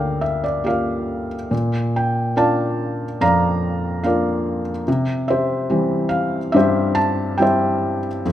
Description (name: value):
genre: classical, lyrical solo piano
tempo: 71 BPM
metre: 4/4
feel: rubato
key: unclear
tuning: A4 = 440 Hz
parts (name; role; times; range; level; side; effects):
- felt-muted upright piano; solo; 0.0-8.3 s; D2 to Bb5; -18 LUFS; equal; none
room: moderate recital hall reverb, RT60 1.6 s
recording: none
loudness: -17 LUFS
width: side -12 dB against mid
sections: 0.0-8.3 A section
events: none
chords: 0.0 Gm7; 1.5 Bb; 4.9 C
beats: 0.66 | 1.52 2.37 3.21 4.05 | 4.87 5.71 6.54 7.40 | 8.25